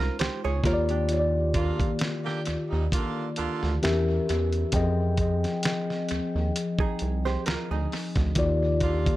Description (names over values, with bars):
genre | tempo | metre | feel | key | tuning
R&B, neo-soul | 66 BPM | 4/4 | swing 54% on 16ths | Eb major | A4 = 439 Hz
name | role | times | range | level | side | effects
hollow-body jazz guitar | second line | 0.0-8.3 s | D4 to Db5 | -33 LUFS | right 7 dB | none
mellow tine electric piano | accompaniment | 0.0-9.2 s | Eb3 to G5 | -27 LUFS | left 2 dB | phaser, tape echo
rubbery square bass | bass | 0.0-9.1 s | C2 to F2 | -27 LUFS | right 1 dB | none
dusty soul sampler-style drum kit | drums | 0.2-9.2 s | hi-hat, kick drum, snare drum | -29 LUFS | equal | tape echo
warm saxophone section | stabs | 1.5-9.2 s | Bb2 to G4 | -34 LUFS | right 5 dB | none
room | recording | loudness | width
light reverb | echo-heavy mix | -24 LUFS | side -16 dB against mid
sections
0.0-9.2 A section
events
none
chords
0.0 Dbmaj9; 0.6 Ebmaj9; 3.8 Edim7; 4.7 Fm9; 8.4 Ebmaj9